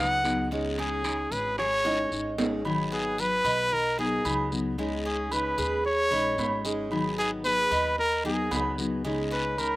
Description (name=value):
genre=latin, Cuban son and guajira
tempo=113 BPM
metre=4/4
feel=straight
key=G# minor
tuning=A4 = 440 Hz
part: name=warm trumpet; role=melody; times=0.0-9.8 s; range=G#4 to F#5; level=-26 LUFS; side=equal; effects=none
part: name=nylon-string guitar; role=second line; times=0.0-2.3 s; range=D#4 to D#5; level=-40 LUFS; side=right 2 dB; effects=none
part: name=fingerpicked steel-string acoustic guitar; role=accompaniment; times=0.0-9.8 s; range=C#3 to G#4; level=-31 LUFS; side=left 2 dB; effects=none
part: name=Cuban tres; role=arpeggios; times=0.0-9.8 s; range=G#3 to G#4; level=-35 LUFS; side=right 3 dB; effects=slapback echo
part: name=upright bass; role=bass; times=0.0-9.8 s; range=G#1 to D#2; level=-37 LUFS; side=equal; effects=none
part: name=guiro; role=percussion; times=0.2-9.8 s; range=none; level=-38 LUFS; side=left 3 dB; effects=none
part: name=timbales and agogo bells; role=percussion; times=0.3-9.8 s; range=none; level=-33 LUFS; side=right 2 dB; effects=slapback echo
room=little or no reverb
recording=recorded outdoors, with no room sound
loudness=-25 LUFS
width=side -18 dB against mid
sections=0.0-2.7 A section; 2.7-9.8 A section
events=drum fill 1.9-2.7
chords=0.0 G#m7; 0.5 C#sus2; 2.7 G#m7; 4.8 C#sus2; 6.9 G#m7; 9.0 C#sus2